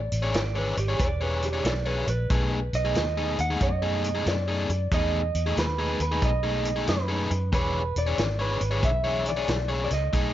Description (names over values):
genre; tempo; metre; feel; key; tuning
electric blues shuffle; 92 BPM; 4/4; swing 66% on 8ths; unclear; A4 = 437 Hz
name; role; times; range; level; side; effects
electric guitar through a small old amp; melody; 0.0-10.3 s; B4 to F#5; -29 LUFS; right 2 dB; spring reverb, plate reverb
vintage muted fingered electric bass; bass; 0.0-10.3 s; E1 to F#2; -28 LUFS; equal; none
vintage drum kit; drums; 0.1-10.3 s; hi-hat, kick drum, snare drum; -30 LUFS; equal; none
biting overdriven guitar; riff; 0.2-10.3 s; B2 to C#5; -29 LUFS; left 3 dB; none
electric slide guitar; second line; 0.4-2.5 s; G4 to D5; -33 LUFS; right 4 dB; plate reverb, tape echo
room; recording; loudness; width
light reverb; nothing above 7.6 kHz; -23 LUFS; side -12 dB against mid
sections
0.0-10.3 A section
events
none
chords
0.0 E6; 2.3 B6; 7.5 E6